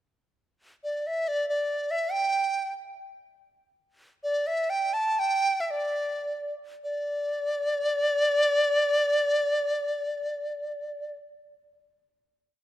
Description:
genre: chinese traditional, Chinese chamber ensemble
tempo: 48-73 BPM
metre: 2/4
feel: rubato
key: unclear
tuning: A4 = 440 Hz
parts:
  - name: hollow dizi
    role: solo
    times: 0.8-11.2 s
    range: D5 to A5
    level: -25 LUFS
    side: equal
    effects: none
room: light reverb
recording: close, detailed microphones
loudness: -25 LUFS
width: side -13 dB against mid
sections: 0.0-6.8 A section; 6.8-11.7 final note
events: slowing down 2.9-6.8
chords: none

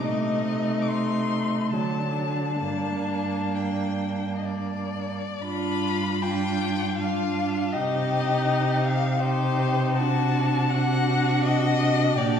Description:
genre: classical, slow romantic movement for string quartet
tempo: 57-84 BPM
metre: 3/4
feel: rubato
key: G minor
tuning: A4 = 439 Hz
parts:
  - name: rich violin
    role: melody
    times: 0.0-12.4 s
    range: C5 to D6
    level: -29 LUFS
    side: left 6 dB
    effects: none
  - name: warm violin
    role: second line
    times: 0.0-12.4 s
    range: D4 to G4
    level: -30 LUFS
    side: left 3 dB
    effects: none
  - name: warm cello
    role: bass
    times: 0.0-12.4 s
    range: G2 to D3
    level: -27 LUFS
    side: right 1 dB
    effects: none
  - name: warm viola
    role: accompaniment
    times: 0.1-12.4 s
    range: F#3 to Eb4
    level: -28 LUFS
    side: right 3 dB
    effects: none
room: wet scoring stage reverb, RT60 2.1 s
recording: heard from further back in the room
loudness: -22 LUFS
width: side -8 dB against mid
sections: 0.0-5.4 A section; 5.4-12.4 B section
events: none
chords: 0.0 Adim/C; 1.7 D; 2.6 Gm; 5.4 G7; 7.8 Cm; 10.0 D7/C

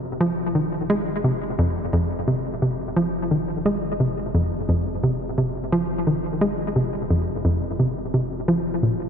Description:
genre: ambient, sequencer-driven space music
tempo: 87 BPM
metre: 4/4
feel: straight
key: F minor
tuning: A4 = 440 Hz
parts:
  - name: warm sub bass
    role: bass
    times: 0.0-9.1 s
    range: F1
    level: -40 LUFS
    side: left 1 dB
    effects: none
  - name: hollow square pluck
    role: riff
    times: 0.2-9.0 s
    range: F2 to Ab3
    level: -20 LUFS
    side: equal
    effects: chorus, analog delay
room: wet cathedral reverb, RT60 6.5 s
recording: in a vast, echoing space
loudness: -20 LUFS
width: side -7 dB against mid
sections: 0.0-9.1 A section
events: none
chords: 0.0 Fm7

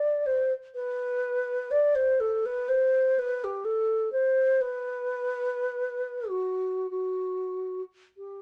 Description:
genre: classical, free, expressive piece for unaccompanied alto flute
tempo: 47-63 BPM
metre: 4/4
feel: rubato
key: unclear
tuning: A4 = 441 Hz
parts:
  - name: hollow alto flute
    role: solo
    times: 0.0-8.4 s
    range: F#4 to D5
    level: -28 LUFS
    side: equal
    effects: none
room: moderate studio reverb, RT60 0.7 s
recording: none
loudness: -28 LUFS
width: mono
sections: 0.0-8.4 A section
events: none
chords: none

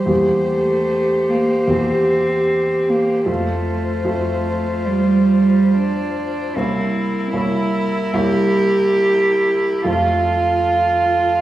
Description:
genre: classical, slow romantic movement for piano quartet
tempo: 74 BPM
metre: 4/4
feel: uneven beats, rubato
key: F major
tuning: A4 = 439 Hz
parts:
  - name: warm violin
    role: melody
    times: 0.0-11.4 s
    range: A4 to C5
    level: -25 LUFS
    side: left 4 dB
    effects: none
  - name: rich cello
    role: second line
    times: 0.0-11.4 s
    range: G3 to G4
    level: -18 LUFS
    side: right 2 dB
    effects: none
  - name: warm baby grand piano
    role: accompaniment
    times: 0.0-11.4 s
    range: C2 to Db5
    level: -22 LUFS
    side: equal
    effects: none
  - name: warm viola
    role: accompaniment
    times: 0.0-11.4 s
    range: E4 to G4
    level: -22 LUFS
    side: right 1 dB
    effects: none
room: wet recital hall reverb, RT60 1.4 s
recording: recorded in a church or concert hall, small room ambience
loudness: -15 LUFS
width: side -14 dB against mid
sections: 0.0-11.4 A section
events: none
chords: 0.1 C7/E; 3.3 F; 6.6 C7b9; 9.9 F

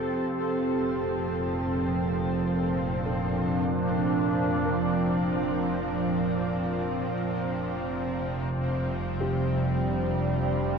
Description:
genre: ambient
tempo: free time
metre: none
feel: none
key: unclear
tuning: A4 = 440 Hz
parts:
  - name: evolving wavetable pad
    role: sustained chords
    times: 0.0-10.8 s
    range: Bb2 to A4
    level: -27 LUFS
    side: right 2 dB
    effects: chorus, built-in reverb
  - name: felt-muted upright piano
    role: arpeggios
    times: 0.0-10.8 s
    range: G4 to Bb4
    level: -41 LUFS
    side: left 4 dB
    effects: none
  - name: warm chamber double bass section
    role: bass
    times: 0.0-10.8 s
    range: F1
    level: -34 LUFS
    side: left 1 dB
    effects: none
  - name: bowed-like drone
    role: drone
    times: 0.0-10.8 s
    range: F3 to C4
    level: -32 LUFS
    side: equal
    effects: built-in reverb
room: wet shimmer reverb, RT60 8.6 s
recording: worn, warbling old tape, cassette tape, warbly pitch drift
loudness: -25 LUFS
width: side -6 dB against mid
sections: 0.0-10.8 A section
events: none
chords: 0.3 Bb69/F; 7.1 Csus2/F

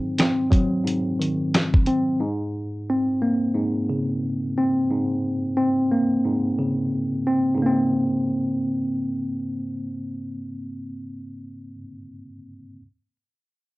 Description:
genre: hip hop, boom-bap hip-hop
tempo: 89 BPM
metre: 4/4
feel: swing 60% on 16ths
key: Bb minor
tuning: A4 = 440 Hz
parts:
  - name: mellow tine electric piano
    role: accompaniment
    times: 0.0-12.8 s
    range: Ab2 to C4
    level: -22 LUFS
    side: equal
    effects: medium stereo tremolo, high-pass filter, low-pass filter, cassette tape
  - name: dusty soul sampler-style drum kit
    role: drums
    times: 0.2-2.1 s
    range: hi-hat, kick drum, rim click, snare drum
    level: -19 LUFS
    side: equal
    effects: cassette tape
room: moderate studio reverb, RT60 0.6 s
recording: home recording on cassette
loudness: -21 LUFS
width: side -20 dB against mid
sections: 0.0-7.6 A section; 7.6-10.3 B section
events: none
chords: 0.0 Ab7; 2.2 Bbm9

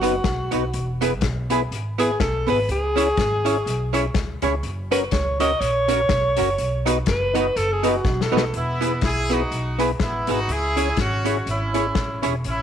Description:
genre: ska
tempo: 123 BPM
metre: 4/4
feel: swing 57% on 8ths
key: E major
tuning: A4 = 442 Hz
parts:
  - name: breathy alto saxophone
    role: melody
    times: 0.0-8.5 s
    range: F#4 to D#5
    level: -23 LUFS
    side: equal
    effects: slapback echo
  - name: archtop guitar, miked and amplified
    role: accompaniment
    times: 0.0-12.3 s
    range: B3 to C#5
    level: -26 LUFS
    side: right 11 dB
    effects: none
  - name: mellow tonewheel organ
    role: stabs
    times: 0.0-12.4 s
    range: B3 to D#5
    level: -28 LUFS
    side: left 10 dB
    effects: overdrive, chorus vibrato, slow rotary speaker
  - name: upright bass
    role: bass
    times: 0.0-12.6 s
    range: E1 to C#2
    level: -26 LUFS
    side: equal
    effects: none
  - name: vintage drum kit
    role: drums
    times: 0.0-12.6 s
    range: hi-hat, kick drum, snare drum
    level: -26 LUFS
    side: left 3 dB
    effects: none
  - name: clear horn section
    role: melody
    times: 8.6-12.6 s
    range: B3 to G#4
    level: -25 LUFS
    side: right 1 dB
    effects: none
room: moderate spring reverb, RT60 1.5 s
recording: 1960s-style stereo with parts hard left and right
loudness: -19 LUFS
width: side -9 dB against mid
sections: 0.0-8.5 A section; 8.5-12.6 B section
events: alto saxophone solo 0.0-8.5; drum fill 8.1-8.5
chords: 0.0 B; 0.7 E; 2.7 C#m; 4.6 F#; 6.6 B; 8.5 E; 10.5 C#m

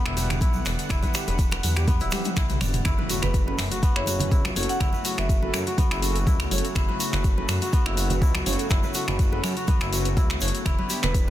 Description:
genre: afro house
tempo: 123 BPM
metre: 4/4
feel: swing 54% on 16ths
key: unclear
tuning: A4 = 440 Hz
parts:
  - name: warm analog pad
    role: sustained chords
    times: 0.0-11.3 s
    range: C#3 to F#5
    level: -34 LUFS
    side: left 1 dB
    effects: chorus, tremolo, sidechain pumping
  - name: kora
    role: arpeggios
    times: 0.0-11.3 s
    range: B3 to D5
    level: -31 LUFS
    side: left 2 dB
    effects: sidechain pumping, tape echo
  - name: smooth synth bass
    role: bass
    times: 0.1-11.3 s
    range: D1 to F#2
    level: -28 LUFS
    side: equal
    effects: sidechain pumping
  - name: deep house drum kit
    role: drums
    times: 0.1-11.2 s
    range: finger snaps, hi-hat, toms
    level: -29 LUFS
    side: left 1 dB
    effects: overdrive, soft clipping on snare
  - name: congas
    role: percussion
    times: 0.2-11.3 s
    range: none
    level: -34 LUFS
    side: right 2 dB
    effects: none
  - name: egg shaker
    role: percussion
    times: 0.2-11.3 s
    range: none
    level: -36 LUFS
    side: right 3 dB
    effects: none
  - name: electronic kick drum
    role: drums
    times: 0.4-11.2 s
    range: none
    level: -23 LUFS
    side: equal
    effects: none
  - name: impact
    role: sound effects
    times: 2.9-4.8 s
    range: none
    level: -34 LUFS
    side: equal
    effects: none
  - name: marimba with medium hard mallets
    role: melody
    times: 3.2-5.9, 11.0-11.2 s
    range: B4 to F#5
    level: -33 LUFS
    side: right 2 dB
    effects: tape echo
  - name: mellow synth brass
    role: stabs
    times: 3.5-11.3 s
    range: C#4 to B4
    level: -34 LUFS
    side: right 2 dB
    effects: chorus, sidechain pumping, tape echo
room: studio reverb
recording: dense, heavily limited modern master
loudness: -21 LUFS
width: side -13 dB against mid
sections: 0.0-2.9 A section; 2.9-11.3 B section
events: drum fill 2.1-2.9; drop 2.9-11.3; impact 2.9-4.8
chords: 0.0 Em7; 2.9 F#m; 10.7 Em7

